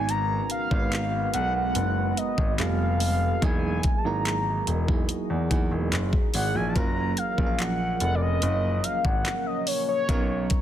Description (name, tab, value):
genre	contemporary R&B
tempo	72 BPM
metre	4/4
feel	straight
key	F# major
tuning	A4 = 440 Hz
part	mellow horn-like synth lead	melody	0.0-10.6 s	C#5 to A#5	-28 LUFS	left 2 dB	chorus, phaser, digital delay
part	FM electric piano with tremolo	accompaniment	0.0-10.6 s	E#3 to B4	-32 LUFS	right 5 dB	none
part	deep dark ambient pad	sustained chords	0.0-10.6 s	E3 to A#5	-34 LUFS	right 2 dB	chorus, built-in reverb, sidechain pumping
part	warm grand piano	bass	0.0-10.4 s	E1 to E2	-28 LUFS	equal	none
part	smooth R&B drum kit	drums	0.1-10.6 s	handclaps, hi-hat, kick drum	-26 LUFS	equal	none
room	little or no reverb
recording	dense, heavily limited modern master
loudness	-23 LUFS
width	side -11 dB against mid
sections	0.0-10.6 A section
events	none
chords	0.0 G#m9; 2.6 Fadd9; 3.4 Emaj9#11; 6.8 F#maj7; 10.1 Bmaj9